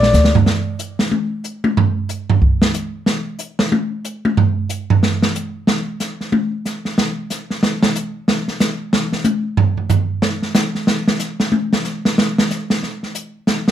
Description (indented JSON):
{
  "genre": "jazz",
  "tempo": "184 BPM",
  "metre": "4/4",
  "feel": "swing 62% on 8ths",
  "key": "none",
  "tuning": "none",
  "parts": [
    { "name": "open jazz drum kit", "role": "drums", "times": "0.0-13.7 s", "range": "hi-hat, kick drum, snare drum, toms", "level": "-16 LUFS", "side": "right 1 dB", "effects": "none" }
  ],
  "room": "moderate studio reverb, RT60 0.5 s",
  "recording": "dark, warm production",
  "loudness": "-16 LUFS",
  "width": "side -10 dB against mid",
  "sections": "0.5-10.9 A section; 10.9-13.7 A section",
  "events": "drum fill 0.0-0.5; drum solo 0.5-13.7",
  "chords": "none"
}